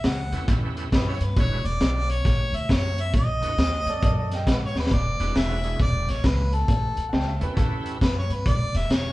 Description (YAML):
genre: electric blues shuffle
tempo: 135 BPM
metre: 4/4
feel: swing 64% on 8ths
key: unclear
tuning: A4 = 440 Hz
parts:
  - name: mellow harmonica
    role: melody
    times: 0.0-9.1 s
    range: A4 to F#5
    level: -29 LUFS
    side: left 1 dB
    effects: none
  - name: upright bass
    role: bass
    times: 0.0-9.1 s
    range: E1 to G#2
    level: -26 LUFS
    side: equal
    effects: none
  - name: crunchy breakbeat drum kit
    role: drums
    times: 0.0-9.0 s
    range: hi-hat, kick drum, snare drum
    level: -24 LUFS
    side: equal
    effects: none
  - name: bright tonewheel organ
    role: accompaniment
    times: 0.3-8.0 s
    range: G#3 to B4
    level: -35 LUFS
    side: right 3 dB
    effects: slow rotary speaker, overdrive, chorus vibrato
  - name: bright upright piano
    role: second line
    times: 3.9-7.9 s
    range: A4 to G5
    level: -34 LUFS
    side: right 2 dB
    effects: none
room: moderate large studio reverb, RT60 1.2 s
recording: band playing live in one room, cassette tape, nothing above 10.8 kHz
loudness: -21 LUFS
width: side -18 dB against mid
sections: 0.0-4.9 A section; 4.9-9.1 A section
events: drum fill 4.7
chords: 0.0 A7; 1.4 E7; 2.3 A6; 3.1 B7; 4.9 E7; 6.7 A7; 8.5 E7(no3)